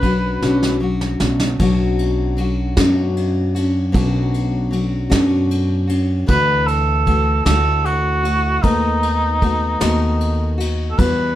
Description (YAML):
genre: acoustic folk duo or small band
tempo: 51 BPM (dotted quarters)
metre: 6/8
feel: straight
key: unclear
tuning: A4 = 440 Hz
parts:
  - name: mellow cor anglais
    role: melody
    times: 0.0-0.8, 6.3-11.4 s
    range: D#4 to B4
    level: -19 LUFS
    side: right 1 dB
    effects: none
  - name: picked steel-string acoustic guitar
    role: accompaniment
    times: 0.0-11.4 s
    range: B2 to F#4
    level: -20 LUFS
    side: left 2 dB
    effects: none
  - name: upright bass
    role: bass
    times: 0.0-11.4 s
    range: B1 to F#2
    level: -19 LUFS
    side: equal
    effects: none
  - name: soft brush drum kit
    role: drums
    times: 0.0-11.2 s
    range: kick drum, ride cymbal, snare drum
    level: -23 LUFS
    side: right 1 dB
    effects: none
room: moderate small room reverb, RT60 0.6 s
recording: none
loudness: -15 LUFS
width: side -13 dB against mid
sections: 0.0-1.6 A section; 1.6-6.3 B section; 6.3-11.4 C section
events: cor anglais solo 0.0-1.6; drum fill 0.4-1.6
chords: 0.0 Bmadd9; 6.3 Dadd9; 8.6 B7/D#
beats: 0.42 | 1.60 2.77 | 3.94 5.12 | 6.29 7.46 | 8.64 9.81 | 10.98